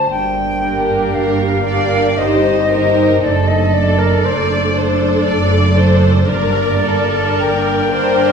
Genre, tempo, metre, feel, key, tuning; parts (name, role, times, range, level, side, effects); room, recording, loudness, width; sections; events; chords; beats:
classical, slow romantic movement for symphony orchestra; 58 BPM; 3/4; rubato; G minor; A4 = 439 Hz
silver concert flute; second line; 0.0-8.3 s; Bb4 to G5; -18 LUFS; left 2 dB
warm symphonic violin section; second line; 0.0-8.3 s; A4 to D5; -20 LUFS; left 3 dB
mellow French horn section; sustained chords; 0.1-8.3 s; A3 to Eb4; -22 LUFS; right 2 dB
dark symphonic double bass section; bass; 0.1-8.3 s; F#1 to G1; -22 LUFS; right 3 dB
rich symphonic cello section; bass; 0.1-8.3 s; F#2 to G2; -19 LUFS; right 2 dB
warm symphonic violin section; melody; 0.6-8.3 s; Bb4 to D5; -22 LUFS; left 3 dB
warm symphonic viola section; accompaniment; 0.6-8.3 s; D4 to Bb4; -20 LUFS; right 2 dB
wet recital hall reverb, RT60 1.6 s; recorded in a church or concert hall; -12 LUFS; side -6 dB against mid
0.1-8.3 A section
0.1 Gm; 2.2 Cm/G; 3.2 D/F#; 6.3 Gm
| 0.08 1.14 2.18 | 3.22 4.24 5.25 | 6.28 7.39